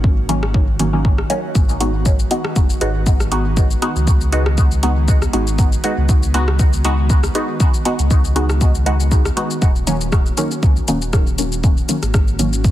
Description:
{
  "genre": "dub techno",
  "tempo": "119 BPM",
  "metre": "4/4",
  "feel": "swing 54% on 16ths",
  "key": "Eb minor",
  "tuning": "A4 = 441 Hz",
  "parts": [
    { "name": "airy breathy pad", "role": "sustained chords", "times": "0.0-12.7 s", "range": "Eb3 to Gb4", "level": "-28 LUFS", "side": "right 2 dB", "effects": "chorus, sidechain pumping" },
    { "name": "warm sub bass", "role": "bass", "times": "0.0-12.7 s", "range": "Eb1 to Db2", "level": "-19 LUFS", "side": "equal", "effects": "sidechain pumping" },
    { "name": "electronic kick drum", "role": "drums", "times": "0.0-12.7 s", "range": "none", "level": "-15 LUFS", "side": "equal", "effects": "overdrive" },
    { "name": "filtered dub chord stab", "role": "stabs", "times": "0.3-12.5 s", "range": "Eb3 to Gb4", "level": "-21 LUFS", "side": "equal", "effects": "chorus, phaser, sidechain pumping, dub echo" },
    { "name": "deep house drum kit", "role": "drums", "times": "0.3-12.7 s", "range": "hi-hat, rim click, shaker", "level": "-26 LUFS", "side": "left 1 dB", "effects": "overdrive" }
  ],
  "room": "little or no reverb",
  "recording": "dense, heavily limited modern master",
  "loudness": "-14 LUFS",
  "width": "side -14 dB against mid",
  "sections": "0.0-9.6 A section; 9.6-12.7 A section",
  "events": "none",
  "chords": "0.0 Ebm7; 1.6 Abm7; 9.6 Ebm7"
}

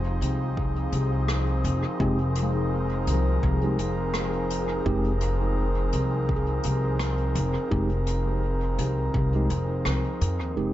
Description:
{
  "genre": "ambient dub",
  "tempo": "84 BPM",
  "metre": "4/4",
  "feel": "swing 60% on 16ths",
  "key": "F minor",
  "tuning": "A4 = 442 Hz",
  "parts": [
    { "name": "airy breathy pad", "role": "sustained chords", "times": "0.0-10.7 s", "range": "F3 to Bb4", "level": "-30 LUFS", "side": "right 1 dB", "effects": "chorus" },
    { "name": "upright bass", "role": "bass", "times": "0.0-10.7 s", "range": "F1 to F2", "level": "-25 LUFS", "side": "equal", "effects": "tube saturation" },
    { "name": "wind-like tuned noise texture", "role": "texture", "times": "0.0-10.6 s", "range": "F4 to Ab4", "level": "-35 LUFS", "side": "left 1 dB", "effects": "built-in reverb" },
    { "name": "soft brush drum kit", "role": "drums", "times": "0.2-10.4 s", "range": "hi-hat, rim click", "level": "-36 LUFS", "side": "left 1 dB", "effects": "low-pass filter on hats, low-pass filter on snare, low-pass filter on room, dub echo" },
    { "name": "electronic kick drum", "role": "drums", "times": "0.6-9.3 s", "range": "none", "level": "-30 LUFS", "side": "equal", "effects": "overdrive" },
    { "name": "mellow tine electric piano", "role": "stabs", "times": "2.0-10.7 s", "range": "Ab3 to G4", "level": "-33 LUFS", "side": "right 1 dB", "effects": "slow stereo tremolo, low-pass filter, dub echo" },
    { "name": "handpan", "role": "arpeggios", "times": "2.4-8.6 s", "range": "F3 to Ab4", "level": "-37 LUFS", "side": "left 4 dB", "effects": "dub echo" }
  ],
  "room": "moderate spring reverb, RT60 2.6 s",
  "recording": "nothing above 7.8 kHz",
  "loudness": "-23 LUFS",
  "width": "side -13 dB against mid",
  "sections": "0.0-10.6 A section",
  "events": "none",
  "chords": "0.0 Fm7"
}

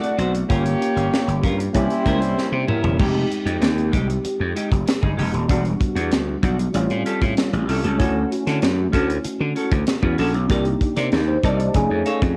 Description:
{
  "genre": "polished 1980s jazz-funk pop",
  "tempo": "96 BPM",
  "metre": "4/4",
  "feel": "straight",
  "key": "unclear",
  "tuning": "A4 = 440 Hz",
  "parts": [
    { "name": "warm horn section", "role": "second line", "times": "0.0-2.7 s", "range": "G3 to D5", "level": "-28 LUFS", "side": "equal", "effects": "cassette tape, analog delay" },
    { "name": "tine electric piano", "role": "accompaniment", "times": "0.0-12.4 s", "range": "G3 to A5", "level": "-27 LUFS", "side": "equal", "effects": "overdrive, ensemble chorus, cassette tape" },
    { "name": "semi-hollow electric guitar", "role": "riff", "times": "0.0-12.3 s", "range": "G3 to D5", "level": "-29 LUFS", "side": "equal", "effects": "analog chorus, cassette tape" },
    { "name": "tight funk drum kit", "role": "drums", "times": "0.0-12.4 s", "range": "crash cymbal, hi-hat, kick drum, snare drum, toms", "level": "-25 LUFS", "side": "equal", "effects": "cassette tape" },
    { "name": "gritty slap bass", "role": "bass", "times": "0.2-12.3 s", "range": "Eb1 to D3", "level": "-24 LUFS", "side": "equal", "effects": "overdrive" }
  ],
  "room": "little or no reverb",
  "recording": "home recording on cassette",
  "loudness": "-20 LUFS",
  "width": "mono",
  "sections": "0.0-3.0 A section; 3.0-12.4 B section",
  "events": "drum fill 2.4-3.0; tine electric piano fill 11.1-12.4",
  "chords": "0.5 Gm7b5; 1.7 C7b9; 3.0 Fm9; 5.5 Em9; 6.7 A7alt; 8.0 Dmaj7; 10.5 Cm9; 11.7 F7alt"
}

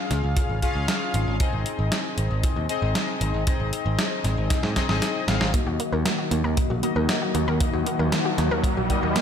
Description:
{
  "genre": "synthwave",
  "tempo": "116 BPM",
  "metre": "4/4",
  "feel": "straight",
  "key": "unclear",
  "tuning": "A4 = 445 Hz",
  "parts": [
    { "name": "analog synth brass", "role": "stabs", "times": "0.0-9.2 s", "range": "Bb3 to F5", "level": "-28 LUFS", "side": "left 5 dB", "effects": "chorus, tape echo" },
    { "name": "modern bright picked electric bass", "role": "bass", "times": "0.1-9.1 s", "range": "Ab1 to Ab2", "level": "-25 LUFS", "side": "right 1 dB", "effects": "tube saturation, sidechain pumping" },
    { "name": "detuned 8-bit digital drum machine", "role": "drums", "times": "0.1-9.2 s", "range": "hi-hat, snare drum", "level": "-27 LUFS", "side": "equal", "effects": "gated reverb" },
    { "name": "kick drum", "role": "drums", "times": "0.4-9.0 s", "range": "none", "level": "-26 LUFS", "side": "equal", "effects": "none" },
    { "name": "analog string pad", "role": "sustained chords", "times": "5.5-9.2 s", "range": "Eb3 to Gb4", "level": "-29 LUFS", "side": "equal", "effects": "ensemble chorus, sidechain pumping" },
    { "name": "analog pluck", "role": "arpeggios", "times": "5.5-9.2 s", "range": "Bb3 to Bb4", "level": "-30 LUFS", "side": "right 2 dB", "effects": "chorus, tape echo" },
    { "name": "riser", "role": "sound effects", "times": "6.8-9.2 s", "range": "none", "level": "-31 LUFS", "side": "right 2 dB", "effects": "none" }
  ],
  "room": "light reverb, digital ambience",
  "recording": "none",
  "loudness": "-21 LUFS",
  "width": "side -8 dB against mid",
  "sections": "0.0-5.5 A section; 5.5-9.2 B section",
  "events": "drum fill 4.5-5.5; filter sweep on analog synth pad 5.5-9.2; filter sweep on synth arpeggio sound 5.5-9.2; riser 6.8-9.2",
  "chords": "0.0 Db; 1.4 Ab; 5.5 Ebm"
}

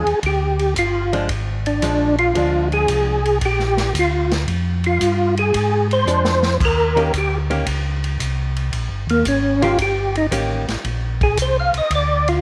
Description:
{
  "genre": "soul jazz organ trio",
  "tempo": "113 BPM",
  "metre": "4/4",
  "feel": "swing 69% on 8ths",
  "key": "Bb mixolydian",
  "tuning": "A4 = 440 Hz",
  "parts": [
    { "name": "percussive tonewheel organ", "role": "melody", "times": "0.0-12.4 s", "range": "Bb3 to F5", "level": "-21 LUFS", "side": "equal", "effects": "slow rotary speaker, chorus vibrato" },
    { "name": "archtop guitar, miked and amplified", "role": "accompaniment", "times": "0.0-10.7 s", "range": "Eb3 to G4", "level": "-27 LUFS", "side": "equal", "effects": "none" },
    { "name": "mellow tonewheel organ", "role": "bass", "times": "0.0-12.4 s", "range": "G1 to Ab2", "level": "-24 LUFS", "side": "equal", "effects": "stopped rotary speaker" },
    { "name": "vintage drum kit", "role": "drums", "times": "0.1-12.4 s", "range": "crash cymbal, hi-hat, kick drum, ride cymbal, snare drum", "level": "-28 LUFS", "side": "equal", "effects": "none" }
  ],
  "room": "light reverb, small room ambience",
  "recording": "none",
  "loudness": "-19 LUFS",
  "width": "mono",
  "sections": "0.0-12.4 A section",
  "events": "tonewheel organ solo 0.0-12.4; drum fill 6.1-6.6",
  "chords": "0.0 Bb7; 6.6 Eb7; 10.8 Bb"
}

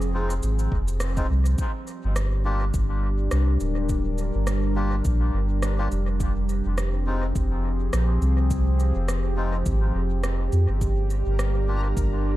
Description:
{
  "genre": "ambient dub",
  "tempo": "104 BPM",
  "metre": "4/4",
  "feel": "swing 57% on 16ths",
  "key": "unclear",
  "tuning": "A4 = 441 Hz",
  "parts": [
    { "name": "warbly tape-like pad", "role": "sustained chords", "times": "0.0-12.4 s", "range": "F3 to Bb4", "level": "-30 LUFS", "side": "equal", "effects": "chorus, built-in reverb, phaser" },
    { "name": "soft dub sub bass", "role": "bass", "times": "0.0-12.4 s", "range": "D1 to F2", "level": "-23 LUFS", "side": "equal", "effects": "none" },
    { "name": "electronic cabasa and rim click", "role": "drums", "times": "0.0-12.1 s", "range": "none", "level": "-36 LUFS", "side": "right 1 dB", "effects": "dub echo" },
    { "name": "melodica", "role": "stabs", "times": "0.1-11.9 s", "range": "Ab3 to G4", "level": "-35 LUFS", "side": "left 2 dB", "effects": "dub echo" },
    { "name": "electronic kick drum", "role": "drums", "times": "0.7-12.1 s", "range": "none", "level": "-27 LUFS", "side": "equal", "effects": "none" },
    { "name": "backwards swelling texture", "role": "texture", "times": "11.3-12.4 s", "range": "Bb3 to Bb4", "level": "-40 LUFS", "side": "left 1 dB", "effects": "built-in reverb" }
  ],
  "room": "little or no reverb",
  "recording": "echo-heavy mix",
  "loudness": "-22 LUFS",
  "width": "side -15 dB against mid",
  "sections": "0.0-1.6 A section; 1.6-12.4 B section",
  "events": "band accent 1.0",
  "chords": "0.0 Fm7; 1.6 Gm7; 6.2 Fm; 10.8 Gm7"
}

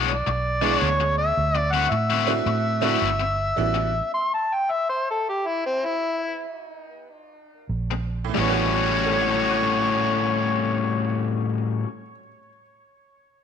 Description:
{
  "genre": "electric blues shuffle",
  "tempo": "87-109 BPM",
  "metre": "4/4",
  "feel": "swing 64% on 8ths",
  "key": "A mixolydian",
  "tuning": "A4 = 441 Hz",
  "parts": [
    { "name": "overdriven electric guitar", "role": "riff", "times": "0.0-3.8, 7.9-11.9 s", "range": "A2 to F#4", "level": "-24 LUFS", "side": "left 8 dB", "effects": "none" },
    { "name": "vintage muted fingered electric bass", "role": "bass", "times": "0.0-4.0, 7.7-11.3 s", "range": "G1 to A2", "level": "-27 LUFS", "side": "right 2 dB", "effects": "none" },
    { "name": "overdriven harmonica", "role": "melody", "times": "0.1-11.4 s", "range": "C4 to C6", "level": "-24 LUFS", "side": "left 1 dB", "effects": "none" },
    { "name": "tack piano", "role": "accompaniment", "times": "0.6-3.9, 8.2-12.6 s", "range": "A2 to A6", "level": "-29 LUFS", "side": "right 12 dB", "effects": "none" }
  ],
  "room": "moderate echo chamber reverb, RT60 1.5 s, small room ambience",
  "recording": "1960s-style stereo with parts hard left and right",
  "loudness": "-21 LUFS",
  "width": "side -7 dB against mid",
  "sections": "0.0-8.4 A section; 8.4-11.1 B section",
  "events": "slowing down 3.6-8.4; stop 3.6-7.7",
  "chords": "0.0 E9; 1.4 D9; 3.6 A13; 7.7 N.C.; 8.4 A13"
}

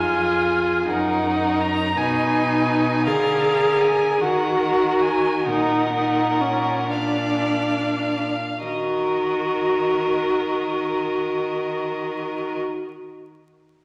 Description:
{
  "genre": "classical, slow romantic movement for string quartet",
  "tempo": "33-56 BPM (dotted quarters)",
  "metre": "6/8",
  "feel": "rubato",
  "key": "Eb minor",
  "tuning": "A4 = 440 Hz",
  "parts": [
    { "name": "warm violin", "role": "melody", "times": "0.0-12.6 s", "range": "Eb5 to Bb5", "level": "-29 LUFS", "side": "equal", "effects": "none" },
    { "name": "rich violin", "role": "second line", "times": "0.0-12.6 s", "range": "Ab4 to D5", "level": "-31 LUFS", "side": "equal", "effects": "none" },
    { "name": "warm viola", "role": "accompaniment", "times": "0.0-12.6 s", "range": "Db4 to Ab4", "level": "-24 LUFS", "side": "equal", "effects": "none" },
    { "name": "rich cello", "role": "bass", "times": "0.0-12.6 s", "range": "F2 to Eb3", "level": "-31 LUFS", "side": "equal", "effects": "none" }
  ],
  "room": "wet concert hall reverb, RT60 1.8 s",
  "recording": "vinyl crackle",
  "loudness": "-21 LUFS",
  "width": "mono",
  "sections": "0.0-8.6 A section; 8.6-12.2 B section",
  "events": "slowing down 2.0-8.6",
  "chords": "0.0 Fm; 0.9 Ebm/Gb; 2.0 Abm/Cb; 3.1 Bb7/D; 4.2 Ebm; 5.5 Ebm/Bb; 6.9 Bb; 8.6 Ebm"
}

